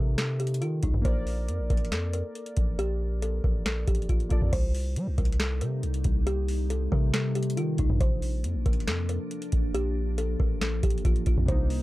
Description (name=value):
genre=hip hop, trap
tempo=138 BPM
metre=4/4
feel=half-time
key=unclear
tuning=A4 = 440 Hz
part: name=kalimba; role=melody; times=0.0-11.8 s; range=Eb4 to C5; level=-35 LUFS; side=left 1 dB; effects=low-pass filter
part: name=warbly lo-fi synth keys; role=accompaniment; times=0.0-4.5, 11.5-11.8 s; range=C3 to D5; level=-38 LUFS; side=equal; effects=chorus, low-pass filter
part: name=long sustained 808-style bass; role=bass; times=0.0-11.8 s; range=Bb1 to G3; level=-28 LUFS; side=equal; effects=none
part: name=booming analog drum machine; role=drums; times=0.2-11.8 s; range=crash cymbal, hi-hat, kick drum, snare drum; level=-27 LUFS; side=equal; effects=none
part: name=glassy FM pad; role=sustained chords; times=4.9-11.8 s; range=C3 to Eb4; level=-35 LUFS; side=left 1 dB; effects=ensemble chorus, built-in reverb
room=little or no reverb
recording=dark, warm production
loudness=-25 LUFS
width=side -17 dB against mid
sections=0.0-4.5 A section; 4.5-11.8 B section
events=none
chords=0.0 Cm7; 1.0 Bb; 4.5 Cm7; 8.0 Bb